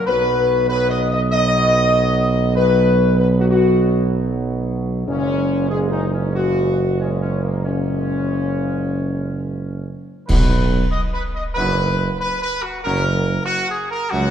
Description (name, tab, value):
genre	classical, ceremonial fanfare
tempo	95 BPM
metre	4/4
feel	straight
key	B major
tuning	A4 = 442 Hz
part	mellow trumpet section	melody	0.0-14.3 s	A#3 to D#5	-24 LUFS	equal	none
part	warm trombone section	sustained chords	0.0-14.3 s	F#2 to G#3	-28 LUFS	right 2 dB	none
part	mellow French horn section	sustained chords	0.1-14.3 s	A#3 to D#5	-20 LUFS	left 3 dB	none
part	warm tuba	bass	0.1-14.3 s	F#1 to C#2	-20 LUFS	right 2 dB	none
part	clash cymbals and concert bass drum	percussion	10.3-11.5 s	none	-21 LUFS	equal	none
room	wet scoring stage reverb, RT60 1.6 s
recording	dark, warm production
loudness	-16 LUFS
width	side -9 dB against mid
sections	0.0-10.3 A section; 10.3-14.3 B section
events	band accent 10.3-10.9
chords	0.1 B; 5.1 F#add9; 10.3 B; 12.8 F#